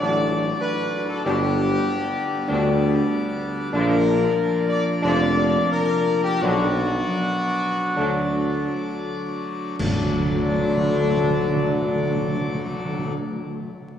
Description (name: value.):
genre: classical, ceremonial fanfare.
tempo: 61-98 BPM.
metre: 4/4.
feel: straight.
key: D major.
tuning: A4 = 435 Hz.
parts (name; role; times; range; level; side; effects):
dark trumpet section; melody; 0.0-13.1 s; D4 to D5; -25 LUFS; left 2 dB; none.
dark French horn section; sustained chords; 0.0-13.1 s; A3 to D4; -31 LUFS; left 3 dB; none.
mellow trombone section; sustained chords; 0.0-13.1 s; A2 to G3; -32 LUFS; equal; none.
pipe organ, full organ; sustained chords; 0.0-13.1 s; F3 to D5; -27 LUFS; left 1 dB; none.
mellow tuba; bass; 0.0-13.1 s; F1 to D2; -24 LUFS; right 1 dB; none.
clash cymbals and concert bass drum; percussion; 9.8-11.7 s; none; -32 LUFS; left 1 dB; none.
timpani; percussion; 9.8-13.2 s; D3; -27 LUFS; right 1 dB; none.
room: wet church reverb, RT60 3.7 s.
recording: vinyl crackle, small room ambience.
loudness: -20 LUFS.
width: side -9 dB against mid.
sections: 0.0-9.8 A section; 9.8-13.6 B section.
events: slowing down 2.5-9.8; band accent 9.8-10.7.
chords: 0.0 D; 1.3 G; 3.7 Bb; 6.4 Bm; 8.0 D.